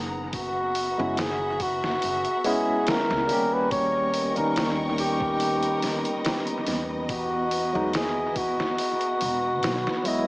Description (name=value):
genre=trip hop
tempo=71 BPM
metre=4/4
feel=swing 53% on 16ths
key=unclear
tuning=A4 = 440 Hz
part: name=barky tine electric piano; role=accompaniment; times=0.0-10.3 s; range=F#3 to D#5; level=-28 LUFS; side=equal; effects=overdrive, tremolo, vintage 12-bit sampler grit, tape echo
part: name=rich studio violin section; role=sustained chords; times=0.0-10.3 s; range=E4 to C#6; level=-34 LUFS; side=equal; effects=none
part: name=upright bass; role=bass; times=0.0-9.8 s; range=E1 to E2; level=-36 LUFS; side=equal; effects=none
part: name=wind-like tuned noise texture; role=texture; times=0.0-10.3 s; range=B3 to A#5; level=-36 LUFS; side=equal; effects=built-in reverb
part: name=trip hop sampler-style drum kit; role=drums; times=0.3-10.3 s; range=hi-hat, kick drum, snare drum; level=-31 LUFS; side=equal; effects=studio reverb, analog delay
part: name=trumpet with bucket mute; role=melody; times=0.4-10.3 s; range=E4 to C#5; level=-26 LUFS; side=equal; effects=tape echo
room=light reverb, studio ambience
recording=echo-heavy mix, small speaker sound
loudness=-23 LUFS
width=side -23 dB against mid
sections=0.0-10.3 A section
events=none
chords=0.3 F#9sus4; 3.7 D#7; 7.1 Emaj7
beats=| 0.34 1.18 2.02 2.87 | 3.71 4.56 5.41 6.25 | 7.09 7.94 8.79 9.63